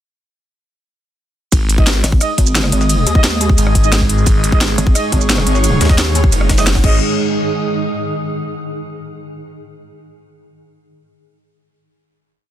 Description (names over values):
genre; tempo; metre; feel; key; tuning
dark technical drum and bass; 175 BPM; 4/4; straight; unclear; A4 = 440 Hz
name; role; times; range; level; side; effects
phased detuned saw bass; bass; 1.5-7.0 s; F#1 to G#1; -15 LUFS; equal; phaser, sidechain pumping
drum and bass drum kit; drums; 1.5-6.9 s; crash cymbal, hi-hat, rim click, shaker, snare drum; -18 LUFS; equal; none
electronic kick drum; drums; 1.5-6.9 s; none; -13 LUFS; equal; none
jungle sampler-style drum kit; drums; 1.5-6.8 s; hi-hat, ride cymbal, snare drum; -26 LUFS; right 1 dB; high-pass filter on cymbals, high-pass filter on snare, high-pass filter on hats
airy breathy pad; texture; 2.3-8.3 s; G#3 to D#6; -21 LUFS; right 2 dB; chorus, sidechain pumping
mellow brass ensemble; stabs; 1.8-7.0 s; G#3 to D#5; -24 LUFS; right 3 dB; ping-pong delay
pulsing pluck wobble bass; bass; 2.0-6.3 s; G#1 to D#2; -16 LUFS; equal; chorus
swarming drone; sustained chords; 5.1-7.0 s; G#2 to G#4; -23 LUFS; right 1 dB; built-in reverb, vintage 12-bit sampler grit, sidechain pumping
room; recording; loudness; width
little or no reverb; dense, heavily limited modern master; -12 LUFS; side -11 dB against mid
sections
1.5-7.0 drop; 7.0-8.4 final note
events
drop 1.5-7.0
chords
1.5 G#5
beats
| 1.52 1.87 2.21 2.55 | 2.90 3.24 3.58 3.92 | 4.27 4.61 4.95 5.29 | 5.64 5.98 6.32 6.67 | 7.01 7.35 7.70 8.04